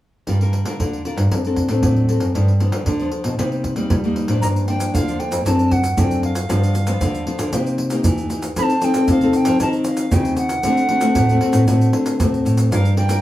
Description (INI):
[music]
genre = samba and choro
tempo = 116 BPM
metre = 4/4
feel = straight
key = G minor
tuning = A4 = 442 Hz
[part]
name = nylon-string guitar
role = accompaniment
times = 0.3-13.2 s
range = G2 to Bb4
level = -20 LUFS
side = left 2 dB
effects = none
[part]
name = nylon-string guitar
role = bass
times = 0.3-13.2 s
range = F2 to G3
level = -20 LUFS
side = right 1 dB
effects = none
[part]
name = surdo, pandeiro and tube shaker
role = percussion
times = 0.3-13.2 s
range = none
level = -23 LUFS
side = right 1 dB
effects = none
[part]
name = bright wooden flute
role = melody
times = 4.4-13.2 s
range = F5 to B5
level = -24 LUFS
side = right 2 dB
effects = none
[sound]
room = wet studio reverb, RT60 0.5 s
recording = band playing live in one room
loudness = -16 LUFS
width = side -14 dB against mid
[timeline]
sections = 0.3-4.4 A section; 4.4-13.2 B section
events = none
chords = 0.3 Gm7; 1.3 D7/F#; 2.3 G7; 3.4 Cm7; 4.4 Gm7; 5.5 D7/F#; 6.5 G7; 7.5 Cm7; 8.6 F7; 9.6 Cm7/Eb; 10.6 D7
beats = | 0.27 0.79 1.31 1.83 | 2.35 2.87 3.38 3.90 | 4.42 4.94 5.46 5.98 | 6.49 7.01 7.53 8.05 | 8.57 9.09 9.60 10.12 | 10.64 11.16 11.68 12.20 | 12.72